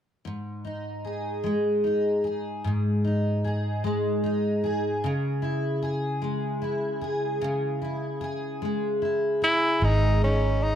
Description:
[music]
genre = pop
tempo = 50 BPM (dotted quarters)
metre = 6/8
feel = straight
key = unclear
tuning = A4 = 440 Hz
[part]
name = picked steel-string acoustic guitar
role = accompaniment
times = 0.2-10.8 s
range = G#2 to G#4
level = -25 LUFS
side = equal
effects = double-tracked left and right
[part]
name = clear tenor saxophone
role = melody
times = 9.4-10.8 s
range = C#4 to E4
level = -23 LUFS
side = equal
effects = digital delay
[part]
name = vintage muted fingered electric bass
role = bass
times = 9.8-10.8 s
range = G#1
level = -22 LUFS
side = right 1 dB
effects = none
[sound]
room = light reverb, studio reverb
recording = none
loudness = -24 LUFS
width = side -9 dB against mid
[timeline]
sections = 0.2-9.8 A section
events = none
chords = 0.2 G#5; 5.0 C#m; 9.8 G#5

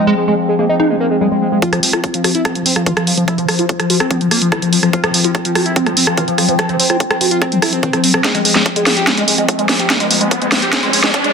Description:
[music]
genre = psychedelic trance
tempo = 145 BPM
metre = 4/4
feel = straight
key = unclear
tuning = A4 = 439 Hz
[part]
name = overdriven synth lead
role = melody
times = 0.0-11.3 s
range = F3 to A4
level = -19 LUFS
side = left 1 dB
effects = chorus, phaser, sidechain pumping, tape echo
[part]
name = overtone-sweeping drone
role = sustained chords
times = 0.0-11.3 s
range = F3 to C4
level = -20 LUFS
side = left 1 dB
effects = chorus, built-in reverb, sidechain pumping
[part]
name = liquid acid bass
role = riff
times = 0.0-11.3 s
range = E3 to Gb4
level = -19 LUFS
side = moving between left 6 dB and right 4 dB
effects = phaser, auto-pan, cassette tape, sidechain pumping, digital delay
[part]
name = drum and bass drum kit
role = drums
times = 1.6-11.3 s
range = hi-hat, rim click, snare drum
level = -15 LUFS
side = right 1 dB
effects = none
[part]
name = electronic kick drum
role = drums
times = 1.6-11.2 s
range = none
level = -18 LUFS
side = equal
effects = high-pass filter on kick
[part]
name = riser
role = sound effects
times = 9.2-11.3 s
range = none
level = -21 LUFS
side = equal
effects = none
[sound]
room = moderate plate reverb, RT60 1.5 s, digital ambience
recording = dense, heavily limited modern master, high-pass filter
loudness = -12 LUFS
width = side -6 dB against mid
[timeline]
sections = 0.0-1.6 A section; 1.6-11.3 B section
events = filter sweep on acid bass 0.0-1.6, 1.6-11.3; build-up 1.6-11.3; drum fill 8.2-11.3; riser 9.2-11.3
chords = 0.0 Ab5; 1.6 F5; 8.2 Fm

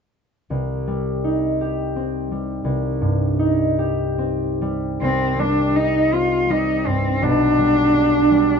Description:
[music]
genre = classical, romantic duo for cello and harp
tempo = 46-58 BPM (dotted quarters)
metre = 6/8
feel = rubato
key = C minor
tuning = A4 = 444 Hz
[part]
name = concert harp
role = accompaniment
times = 0.5-8.6 s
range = B1 to G4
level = -20 LUFS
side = right 1 dB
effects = none
[part]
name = rich cello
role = melody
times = 5.0-8.6 s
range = C4 to F4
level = -17 LUFS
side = left 1 dB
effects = none
[sound]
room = light reverb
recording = nothing above 7.7 kHz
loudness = -17 LUFS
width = side -6 dB against mid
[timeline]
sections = 0.5-5.0 A section; 5.0-8.6 B section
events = none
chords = 0.5 Cm; 7.2 G/B

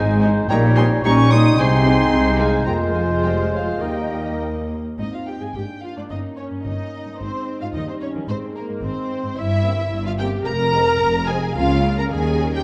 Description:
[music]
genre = quick classical-period movement for symphony orchestra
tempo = 110 BPM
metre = 2/4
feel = rubato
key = Ab major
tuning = A4 = 440 Hz
[part]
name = muted studio violin section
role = melody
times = 0.0-12.6 s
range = Bb4 to Bb5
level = -30 LUFS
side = equal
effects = none
[part]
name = muted chamber violin section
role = second line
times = 0.0-12.6 s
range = Bb3 to Eb6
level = -31 LUFS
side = equal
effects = none
[part]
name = silver concert flute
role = second line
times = 0.0-4.4 s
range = Db5 to C6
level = -31 LUFS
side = equal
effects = none
[part]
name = warm clarinet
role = second line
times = 0.0-4.7 s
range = Eb4 to F4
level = -28 LUFS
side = equal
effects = none
[part]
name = warm oboe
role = second line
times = 0.0-4.7 s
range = C5 to Eb5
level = -32 LUFS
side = equal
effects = none
[part]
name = muted studio viola section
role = accompaniment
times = 0.0-12.6 s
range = G3 to Bb4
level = -30 LUFS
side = equal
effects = none
[part]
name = warm bassoon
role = accompaniment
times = 0.0-4.7 s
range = G3 to Bb3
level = -27 LUFS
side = equal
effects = none
[part]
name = dark French horn section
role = sustained chords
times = 0.0-12.6 s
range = F3 to Eb4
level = -28 LUFS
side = equal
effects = none
[part]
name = muted studio cello section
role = bass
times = 0.0-12.6 s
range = Eb2 to Eb3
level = -26 LUFS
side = equal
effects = none
[part]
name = muted studio double bass section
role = bass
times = 0.0-12.6 s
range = F1 to Eb2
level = -25 LUFS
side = equal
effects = none
[sound]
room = moderate scoring stage reverb, RT60 1.9 s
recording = dark, warm production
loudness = -20 LUFS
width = mono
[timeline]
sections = 0.0-5.0 A section; 5.0-12.6 B section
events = none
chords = 0.5 Eb7/Bb; 1.6 Ab/C; 2.7 Fm; 3.8 Eb; 5.0 Ab; 5.6 Bb; 6.1 Eb7; 7.2 Ab; 7.7 Eb; 8.3 Ab; 9.4 C7/G; 10.5 Fm; 11.6 Bbm/Db; 12.1 Eb7

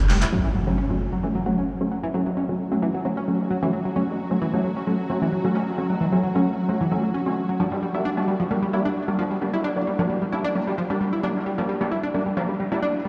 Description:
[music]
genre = driving peak-time techno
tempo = 132 BPM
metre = 4/4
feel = straight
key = F# phrygian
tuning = A4 = 440 Hz
[part]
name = tight sequenced synth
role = riff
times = 0.1-13.1 s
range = E3 to E4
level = -28 LUFS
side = equal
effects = chorus, tube saturation, digital delay
[part]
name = vintage brush drum kit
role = drums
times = 0.1-12.9 s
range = ride cymbal, snare drum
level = -43 LUFS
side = equal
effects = none
[part]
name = rave stab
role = stabs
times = 0.3-12.9 s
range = F#3 to D4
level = -27 LUFS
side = equal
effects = chorus, built-in reverb, cassette tape, tape echo
[part]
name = swarming drone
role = drone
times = 1.7-13.1 s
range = F#3 to F#4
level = -34 LUFS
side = equal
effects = built-in reverb
[part]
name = impact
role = sound effects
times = 0.3-2.1 s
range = none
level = -31 LUFS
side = equal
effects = none
[sound]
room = moderate huge ambient reverb, RT60 5.3 s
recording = played on a big sound system in a bare room, large studio reverb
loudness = -24 LUFS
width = mono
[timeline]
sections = 0.3-13.1 A section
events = impact 0.3-2.1; filter sweep on synth stab 0.3-13.1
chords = 0.3 F#m; 7.6 Gm

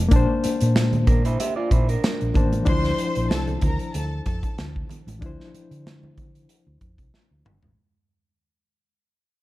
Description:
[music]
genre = lush 1970s-style soul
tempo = 94 BPM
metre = 4/4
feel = swing 54% on 16ths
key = D minor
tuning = A4 = 438 Hz
[part]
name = bright reed electric piano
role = accompaniment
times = 0.0-7.8 s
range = E3 to A5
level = -27 LUFS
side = left 4 dB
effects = overdrive, fast tremolo
[part]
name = hollow-body short-scale fingered electric bass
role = bass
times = 0.0-7.7 s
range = G1 to D3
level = -24 LUFS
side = equal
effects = none
[part]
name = modern studio drum kit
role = drums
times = 0.1-7.8 s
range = hi-hat, kick drum, snare drum, toms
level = -23 LUFS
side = equal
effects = none
[part]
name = congas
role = percussion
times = 0.4-7.8 s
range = none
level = -32 LUFS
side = right 3 dB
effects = none
[part]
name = electric guitar through a small old amp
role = riff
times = 1.1-2.6 s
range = D4 to E5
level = -28 LUFS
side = right 3 dB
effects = none
[part]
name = warm studio string section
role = second line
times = 2.7-4.5 s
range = A4 to C6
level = -31 LUFS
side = left 1 dB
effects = none
[sound]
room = light reverb, small room ambience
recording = dark, warm production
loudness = -19 LUFS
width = side -17 dB against mid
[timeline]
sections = 0.0-7.8 A section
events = fade-out 0.0-7.8; drum fill 7.1-7.8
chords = 0.0 Bbmaj9; 2.7 Dm9

